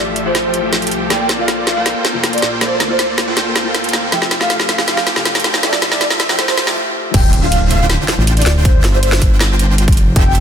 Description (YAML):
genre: future bass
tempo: 159 BPM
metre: 4/4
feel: half-time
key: unclear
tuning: A4 = 440 Hz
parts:
  - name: warm concert grand piano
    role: accompaniment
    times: 0.0-7.2 s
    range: A3 to F5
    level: -24 LUFS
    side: left 4 dB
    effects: sidechain pumping, ping-pong delay
  - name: supersaw chords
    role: riff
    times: 0.0-10.4 s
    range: D3 to G5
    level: -20 LUFS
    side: right 1 dB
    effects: sidechain pumping, low-pass filter, ping-pong delay
  - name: fat analog bass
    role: bass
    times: 0.0-10.4 s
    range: D1 to D2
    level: -18 LUFS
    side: equal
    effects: tube saturation, sidechain pumping
  - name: trap drum kit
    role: drums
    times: 0.2-10.4 s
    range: crash cymbal, hi-hat, snare drum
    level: -17 LUFS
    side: equal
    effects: soft clipping on snare
  - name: breathy flute-like synth lead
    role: melody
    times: 0.3-10.3 s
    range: C5 to G5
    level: -21 LUFS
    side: right 1 dB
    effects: ensemble chorus, sidechain pumping, ping-pong delay
  - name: riser and impact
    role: sound effects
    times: 4.1-8.7 s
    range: none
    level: -26 LUFS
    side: equal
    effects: none
  - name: electronic kick drum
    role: drums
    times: 7.1-10.2 s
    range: none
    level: -12 LUFS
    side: equal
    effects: none
room: light reverb, digital ambience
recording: dense, heavily limited modern master, high-pass filter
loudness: -12 LUFS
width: side -8 dB against mid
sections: 0.0-7.1 A section; 7.1-10.4 B section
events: build-up 0.0-7.1; drum fill 0.0-6.8; filter sweep on supersaw synth 0.0-7.1; stop 6.8-7.1; drop 7.1-10.4; impact 7.1-8.7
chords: 0.0 Fmaj9; 1.1 Bbmaj7; 4.1 Fmaj9; 7.1 Dm9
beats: 0.35 0.73 | 1.10 1.48 1.86 2.24 | 2.61 2.99 3.37 3.75 | 4.12 4.50 4.88 5.25 | 5.63 6.01 6.39 6.76 | 7.14 7.52 7.90 8.27 | 8.65 9.03 9.41 9.78 | 10.16